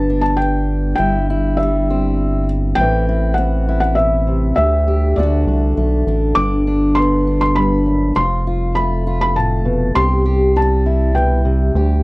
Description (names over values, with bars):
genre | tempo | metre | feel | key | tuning
acoustic folk duo or small band | 100 BPM | 3/4 | straight | unclear | A4 = 439 Hz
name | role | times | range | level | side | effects
felt-muted upright piano | melody | 0.0-12.0 s | D5 to D6 | -20 LUFS | equal | none
fingerpicked steel-string acoustic guitar | accompaniment | 0.0-12.0 s | D2 to G4 | -18 LUFS | left 1 dB | none
rubbery square bass | bass | 0.0-12.0 s | F1 to D2 | -17 LUFS | equal | none
room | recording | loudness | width
light reverb | dry, close 1970s-style studio recording | -14 LUFS | side -23 dB against mid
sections
0.0-12.0 A section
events
none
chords
0.0 G; 1.0 C/G; 2.8 Am; 4.6 Dsus4; 5.2 D; 6.4 G; 8.2 F; 10.0 C